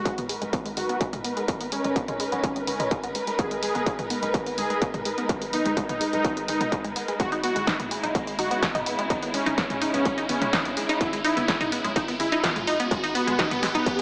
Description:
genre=melodic techno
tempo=126 BPM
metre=4/4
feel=straight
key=G# minor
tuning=A4 = 440 Hz
part: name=soft supersaw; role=melody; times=0.0-14.0 s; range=B3 to G#4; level=-32 LUFS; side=equal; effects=sidechain pumping, dub echo
part: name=dark symphonic string section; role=sustained chords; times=0.0-14.0 s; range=C#3 to B4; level=-34 LUFS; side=equal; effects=sidechain pumping
part: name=tight sequencer bass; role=bass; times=0.0-14.0 s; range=D#1 to G#1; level=-45 LUFS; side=equal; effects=sidechain pumping
part: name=riser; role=sound effects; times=0.0-14.0 s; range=none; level=-37 LUFS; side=equal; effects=none
part: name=tight sequenced synth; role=arpeggios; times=0.1-14.0 s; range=G#3 to D#4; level=-32 LUFS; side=equal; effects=chorus, phaser, sidechain pumping, tape echo
part: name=electronic kick drum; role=drums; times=0.1-14.0 s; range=none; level=-32 LUFS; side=equal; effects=distortion
part: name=punchy analog drum machine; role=drums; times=0.1-14.0 s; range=hi-hat, snare drum, toms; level=-33 LUFS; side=equal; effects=overdrive
room=moderate recital hall reverb, RT60 1.4 s, digital ambience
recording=small speaker sound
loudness=-26 LUFS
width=mono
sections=0.0-14.0 A section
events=build-up 0.0-14.0; riser 0.0-14.0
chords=0.0 G#m; 7.2 C#madd9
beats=0.06 0.53 1.01 | 1.48 1.96 2.44 2.91 | 3.39 3.87 4.34 4.82 | 5.29 5.77 6.25 6.72 | 7.20 7.67 8.15 8.63 | 9.10 9.58 10.05 10.53 | 11.01 11.48 11.96 12.44 | 12.91 13.39 13.87

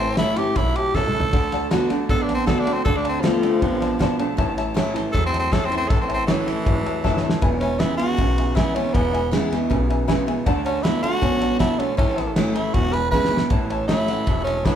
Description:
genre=rockabilly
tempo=158 BPM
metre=4/4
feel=straight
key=A major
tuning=A4 = 436 Hz
part: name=raspy tenor saxophone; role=melody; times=0.0-14.8 s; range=E3 to B4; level=-24 LUFS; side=right 1 dB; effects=none
part: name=picked steel-string acoustic guitar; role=accompaniment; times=0.0-14.8 s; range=E2 to F#4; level=-27 LUFS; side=left 2 dB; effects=none
part: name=warm upright piano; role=accompaniment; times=0.0-14.8 s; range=B4 to A5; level=-29 LUFS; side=left 4 dB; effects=none
part: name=electric guitar through a small old amp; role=riff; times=0.0-14.8 s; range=E2 to B3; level=-26 LUFS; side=right 4 dB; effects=spring reverb
part: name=upright bass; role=bass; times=0.0-14.7 s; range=E1 to E2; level=-28 LUFS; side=equal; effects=none
part: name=cloth-damped thuddy drum kit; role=drums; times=0.2-14.7 s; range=kick drum, ride cymbal, snare drum, toms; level=-24 LUFS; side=equal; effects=none
room=moderate large studio reverb, RT60 0.9 s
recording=band playing live in one room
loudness=-18 LUFS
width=side -9 dB against mid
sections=0.0-13.5 A section; 13.5-14.8 B section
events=tenor saxophone solo 0.0-13.5; drum fill 0.9-1.3, 7.0-7.4, 13.1-13.5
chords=0.0 A; 1.3 D; 2.9 Dm7; 4.4 A; 7.4 E; 10.5 D; 12.0 A; 12.7 E; 13.5 A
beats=0.18 0.56 0.95 | 1.33 1.71 2.09 2.47 | 2.85 3.24 3.62 4.00 | 4.38 4.76 5.14 5.52 | 5.90 6.28 6.66 7.04 | 7.42 7.80 8.18 8.56 | 8.94 9.32 9.70 10.08 | 10.46 10.84 11.22 11.60 | 11.98 12.36 12.74 13.12 | 13.51 13.89 14.27 14.65

